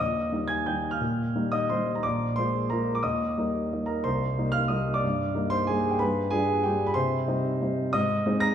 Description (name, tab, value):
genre	classical, piano waltz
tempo	170-197 BPM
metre	3/4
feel	rubato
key	Eb major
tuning	A4 = 440 Hz
part	warm concert grand piano	solo	0.0-8.5 s	Bb1 to Bb6	-24 LUFS	equal	none
room	wet recital hall reverb, RT60 1.9 s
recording	heard from further back in the room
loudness	-24 LUFS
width	side -9 dB against mid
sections	0.0-8.5 A section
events	none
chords	0.0 Eb; 2.0 Bb7; 3.0 Eb; 4.1 Cm7; 6.0 G7; 7.0 Cm; 7.9 Ab